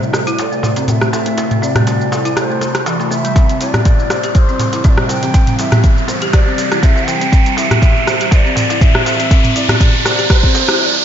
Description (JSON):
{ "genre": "afro house", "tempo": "121 BPM", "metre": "4/4", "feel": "swing 54% on 16ths", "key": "A dorian", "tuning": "A4 = 441 Hz", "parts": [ { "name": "bright reedy bansuri", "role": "melody", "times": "0.0-11.0 s", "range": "C5 to G5", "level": "-22 LUFS", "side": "equal", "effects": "diffuse ambient delay" }, { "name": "ethereal airy pad", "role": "sustained chords", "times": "0.0-10.8 s", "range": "C3 to C5", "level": "-23 LUFS", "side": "equal", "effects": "ensemble chorus, built-in reverb, sidechain pumping" }, { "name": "afro-pop drum kit", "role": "drums", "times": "0.0-10.8 s", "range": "cabasa, hi-hat, rim click, toms", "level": "-19 LUFS", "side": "right 1 dB", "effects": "none" }, { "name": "riser", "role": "sound effects", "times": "0.0-11.0 s", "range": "none", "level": "-19 LUFS", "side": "right 2 dB", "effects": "none" }, { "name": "folk marimba with medium hard mallets", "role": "arpeggios", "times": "0.1-10.8 s", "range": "E3 to C5", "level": "-21 LUFS", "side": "left 1 dB", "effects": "sidechain pumping, low-pass filter, diffuse ambient delay" }, { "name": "warm 808-style bass", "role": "bass", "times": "0.1-10.7 s", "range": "none", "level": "barely audible", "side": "none", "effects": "none" }, { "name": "darbuka", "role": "percussion", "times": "0.1-10.7 s", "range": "none", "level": "-21 LUFS", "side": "left 1 dB", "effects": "none" }, { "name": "electronic kick drum", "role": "drums", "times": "3.4-10.5 s", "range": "none", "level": "-11 LUFS", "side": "equal", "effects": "none" } ], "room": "moderate lush hall reverb, RT60 1.6 s, digital ambience", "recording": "dreamy mix soaked in reverb, nothing above 7.5 kHz", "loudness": "-11 LUFS", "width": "side -9 dB against mid", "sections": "0.0-11.0 A section", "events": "build-up 0.0-11.0; riser 0.0-11.0", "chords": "0.0 Am; 3.4 Am7" }